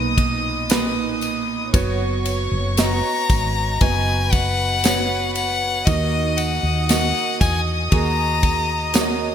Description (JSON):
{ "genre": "pop ballad", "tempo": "58 BPM", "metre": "4/4", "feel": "straight", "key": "unclear", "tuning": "A4 = 440 Hz", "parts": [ { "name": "warm studio violin section", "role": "second line", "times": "0.0-9.3 s", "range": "B4 to D#6", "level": "-27 LUFS", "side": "left 1 dB", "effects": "none" }, { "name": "warm baby grand piano", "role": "accompaniment", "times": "0.0-9.3 s", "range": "A#2 to D#5", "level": "-26 LUFS", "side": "right 6 dB", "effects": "analog chorus" }, { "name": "woody fretless electric bass", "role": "bass", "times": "0.0-9.3 s", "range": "F#1 to E2", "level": "-24 LUFS", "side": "equal", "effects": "none" }, { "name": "modern studio drum kit", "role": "drums", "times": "0.2-9.2 s", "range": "kick drum, ride cymbal, snare drum", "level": "-22 LUFS", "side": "equal", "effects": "gated reverb" }, { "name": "tambourine", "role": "percussion", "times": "0.7-9.2 s", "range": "none", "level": "-32 LUFS", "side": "right 8 dB", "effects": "none" }, { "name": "clear violin", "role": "melody", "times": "2.8-9.3 s", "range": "D#5 to A#5", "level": "-22 LUFS", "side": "left 4 dB", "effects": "none" } ], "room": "light reverb, small room ambience", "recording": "bright 1980s-style digital production", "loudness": "-17 LUFS", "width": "side -9 dB against mid", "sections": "0.0-9.3 A section", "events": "none", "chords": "0.0 Bmaj7; 1.7 F#sus4; 5.9 D#m" }